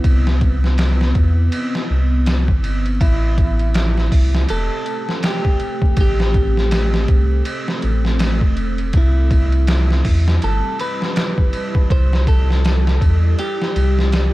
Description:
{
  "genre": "trip hop",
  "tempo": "81 BPM",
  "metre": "4/4",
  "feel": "swing 59% on 16ths",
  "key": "A minor",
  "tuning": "A4 = 442 Hz",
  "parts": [
    { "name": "clean electric guitar", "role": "melody", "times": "0.0-14.3 s", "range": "E4 to C5", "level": "-25 LUFS", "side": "right 1 dB", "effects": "phaser, dub echo" },
    { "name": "deep dark ambient pad", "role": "sustained chords", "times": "0.0-14.3 s", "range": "G3 to D5", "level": "-27 LUFS", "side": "equal", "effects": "chorus, built-in reverb" },
    { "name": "soft dub sub bass", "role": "bass", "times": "0.0-14.3 s", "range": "E1 to E2", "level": "-16 LUFS", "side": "equal", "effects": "none" },
    { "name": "trip hop sampler-style drum kit", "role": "drums", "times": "0.0-14.3 s", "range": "hi-hat, kick drum, ride cymbal, snare drum", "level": "-19 LUFS", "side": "equal", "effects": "overdrive" }
  ],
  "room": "digital ambience",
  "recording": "dark, warm production, vinyl crackle",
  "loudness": "-14 LUFS",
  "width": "side -18 dB against mid",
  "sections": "0.0-3.0 A section; 3.0-14.3 B section",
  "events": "none",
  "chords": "0.0 Cmaj7; 3.0 Am7; 8.9 Cmaj7"
}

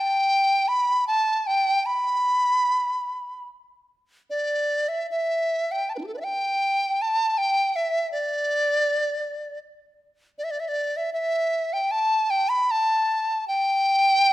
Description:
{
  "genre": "chinese traditional, Chinese chamber ensemble",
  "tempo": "77 BPM",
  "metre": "4/4",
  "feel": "uneven beats, rubato",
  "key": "G gong mode",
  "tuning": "A4 = 440 Hz",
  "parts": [
    { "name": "large dizi", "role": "solo", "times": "0.0-14.3 s", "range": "D4 to B5", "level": "-21 LUFS", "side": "equal", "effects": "none" }
  ],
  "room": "moderate recital hall reverb, RT60 1.3 s",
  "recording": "close, detailed microphones",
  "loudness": "-21 LUFS",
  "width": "side -15 dB against mid",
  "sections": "0.0-14.3 A section",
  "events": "none",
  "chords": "none"
}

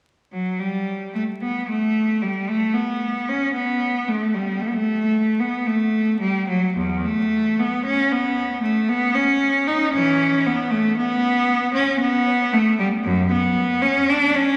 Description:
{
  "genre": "classical, baroque-style suite movement for unaccompanied cello",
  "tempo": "57 BPM",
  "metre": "3/4",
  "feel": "rubato",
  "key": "unclear",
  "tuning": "A4 = 437 Hz",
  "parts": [
    { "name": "clear cello", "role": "solo", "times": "0.3-14.6 s", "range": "E2 to Eb4", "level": "-21 LUFS", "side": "equal", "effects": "none" }
  ],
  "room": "wet church reverb, RT60 3.1 s",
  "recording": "vinyl crackle",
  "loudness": "-21 LUFS",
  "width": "mono",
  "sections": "0.3-14.6 A section",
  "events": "none",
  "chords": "none"
}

